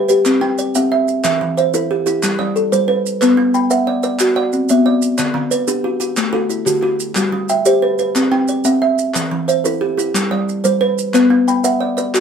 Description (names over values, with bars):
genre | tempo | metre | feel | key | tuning
southern african traditional, mbira-style interlocking cycle | 121 BPM (dotted quarters) | 12/8 | straight | G major | A4 = 442 Hz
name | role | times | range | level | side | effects
kalimba | arpeggios | 0.0-12.2 s | D3 to B5 | -16 LUFS | left 3 dB | none
kalimba | arpeggios | 0.0-12.2 s | D3 to G5 | -18 LUFS | right 6 dB | none
maracas | percussion | 0.1-12.2 s | none | -25 LUFS | right 8 dB | none
group handclap | percussion | 0.3-12.2 s | none | -24 LUFS | left 2 dB | none
room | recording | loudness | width
moderate studio reverb, RT60 0.5 s | band playing live in one room | -14 LUFS | side -7 dB against mid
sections
0.0-12.2 A section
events
none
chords
0.3 C; 1.2 Em; 2.2 G; 3.2 Bm; 5.2 D; 7.2 G; 8.2 C; 9.1 Em; 10.1 G; 11.1 Bm